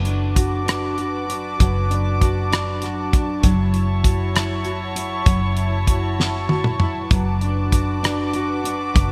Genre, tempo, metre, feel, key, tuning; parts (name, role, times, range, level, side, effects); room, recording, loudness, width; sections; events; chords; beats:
six-eight pop ballad; 65 BPM (dotted quarters); 6/8; straight; A4 = 441 Hz
fingerpicked steel-string acoustic guitar; accompaniment; 0.0-9.1 s; F#3 to F#4; -28 LUFS; equal; double-tracked
warm studio string section; sustained chords; 0.0-9.1 s; E4 to D6; -29 LUFS; equal
vintage muted fingered electric bass; bass; 0.0-9.1 s; F#1; -26 LUFS; equal
damped 70s drum kit; drums; 0.1-9.1 s; hi-hat, kick drum, rim click, snare drum, toms; -22 LUFS; equal
light reverb, studio ambience; bright 1980s-style digital production; -20 LUFS; mono
0.0-9.1 A section
drum fill 6.2-7.1
0.0 Bm7/F#; 3.4 A/F#; 7.1 Bm7/F#
0.68 | 1.60 2.52 | 3.44 4.35 | 5.27 6.19 | 7.11 8.04 | 8.96